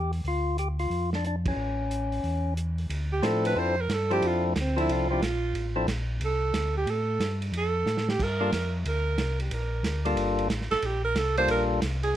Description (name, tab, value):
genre	soul jazz organ trio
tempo	181 BPM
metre	4/4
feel	swing 65% on 8ths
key	D minor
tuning	A4 = 440 Hz
part	percussive tonewheel organ	melody	0.0-5.9, 8.4-11.8 s	F3 to A4	-29 LUFS	left 3 dB	overdrive, stopped rotary speaker
part	mellow tonewheel organ	bass	0.0-12.2 s	G1 to A2	-29 LUFS	equal	slow rotary speaker
part	warm soul drum kit	drums	0.1-12.1 s	crash cymbal, hi-hat, kick drum, ride cymbal, snare drum	-34 LUFS	right 2 dB	none
part	warm alto saxophone	melody	3.1-12.2 s	A3 to C5	-28 LUFS	right 4 dB	none
room	little or no reverb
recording	close, detailed microphones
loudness	-25 LUFS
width	side -12 dB against mid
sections	0.0-2.9 A section; 2.9-12.2 B section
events	band accent 1.4; alto saxophone solo 2.9-12.2; drum fill 7.9-8.2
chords	0.2 Dm; 1.6 A; 2.9 Dm7; 8.2 Gm7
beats	| 0.24 0.58 0.91 1.24 | 1.57 1.91 2.24 2.57 | 2.90 3.23 3.56 3.90 | 4.23 4.56 4.89 5.22 | 5.55 5.88 6.21 6.54 | 6.88 7.21 7.54 7.87 | 8.20 8.53 8.86 9.19 | 9.52 9.85 10.18 10.51 | 10.84 11.16 11.49 11.82 | 12.15